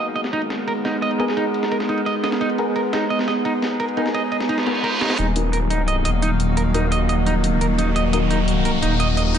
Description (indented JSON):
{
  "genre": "dark technical drum and bass",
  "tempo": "173 BPM",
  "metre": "4/4",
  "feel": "straight",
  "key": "Eb minor",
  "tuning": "A4 = 440 Hz",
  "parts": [
    { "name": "metallic inharmonic drone", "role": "sustained chords", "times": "0.0-9.4 s", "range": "Eb3 to F5", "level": "-24 LUFS", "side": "equal", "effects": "chorus, built-in reverb" },
    { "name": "clean electric guitar", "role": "arpeggios", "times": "0.0-9.4 s", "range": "Eb4 to Eb5", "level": "-25 LUFS", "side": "right 3 dB", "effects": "low-pass filter, dub echo" },
    { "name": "orchestra-hit-like synth stab", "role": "stabs", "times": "0.0-9.4 s", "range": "Cb4 to Bb4", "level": "-29 LUFS", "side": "left 4 dB", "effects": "built-in reverb, dub echo" },
    { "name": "warbly tape-like pad", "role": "texture", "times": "0.0-9.4 s", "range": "Gb3 to Bb5", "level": "-26 LUFS", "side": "equal", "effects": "chorus, built-in reverb" },
    { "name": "breakbeat sampler-style drum kit", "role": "drums", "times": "0.2-5.2 s", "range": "ride cymbal, snare drum", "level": "-29 LUFS", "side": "equal", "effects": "high-pass filter on cymbals, low-pass filter on cymbals, high-pass filter on snare, low-pass filter on snare" },
    { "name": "reverse cymbal and riser", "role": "sound effects", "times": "4.6-9.4 s", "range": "none", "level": "-27 LUFS", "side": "right 1 dB", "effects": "none" },
    { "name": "phased detuned saw bass", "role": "bass", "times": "5.2-9.4 s", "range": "Eb1", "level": "-20 LUFS", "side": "equal", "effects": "phaser, overdrive" },
    { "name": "electronic hi-hat", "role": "drums", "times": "5.2-9.4 s", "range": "none", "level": "-31 LUFS", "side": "equal", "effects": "overdrive, high-pass filter on hats, low-pass filter on hats" }
  ],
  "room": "light reverb",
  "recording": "nothing above 10.8 kHz",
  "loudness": "-18 LUFS",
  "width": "side -8 dB against mid",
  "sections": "0.0-5.2 A section; 5.2-9.4 B section",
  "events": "filter sweep on synth drone 0.0-5.2; reverse cymbal 4.6-5.2; build-up 5.2-9.4; riser 5.2-9.4",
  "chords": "0.0 Abmadd9; 5.2 Ebm"
}